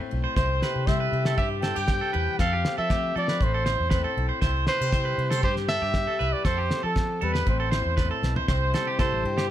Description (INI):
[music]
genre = highlife guitar band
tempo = 118 BPM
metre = 4/4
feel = straight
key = C major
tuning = A4 = 440 Hz
[part]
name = picked steel-string acoustic guitar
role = accompaniment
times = 0.0-9.5 s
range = A2 to C5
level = -33 LUFS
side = left 6 dB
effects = none
[part]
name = fingered electric bass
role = bass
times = 0.1-9.5 s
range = A1 to F3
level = -28 LUFS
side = equal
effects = none
[part]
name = electric guitar at the edge of break-up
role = arpeggios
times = 0.2-9.5 s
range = G4 to C5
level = -30 LUFS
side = right 4 dB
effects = tape echo
[part]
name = breathy trumpet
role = melody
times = 0.4-9.5 s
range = A4 to G5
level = -28 LUFS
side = equal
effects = none
[part]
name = cloth-damped thuddy drum kit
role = drums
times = 0.4-9.5 s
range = kick drum, snare drum, toms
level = -27 LUFS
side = equal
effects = none
[sound]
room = little or no reverb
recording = none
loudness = -22 LUFS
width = side -12 dB against mid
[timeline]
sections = 0.0-8.5 A section; 8.5-9.5 B section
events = drum fill 8.2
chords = 0.4 C; 2.4 F; 3.4 Am; 4.4 C; 6.5 F; 7.5 Am; 8.5 C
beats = | 0.36 0.87 1.38 1.88 | 2.39 2.90 3.41 3.91 | 4.42 4.93 5.44 5.94 | 6.45 6.96 7.47 7.98 | 8.48 8.99 9.50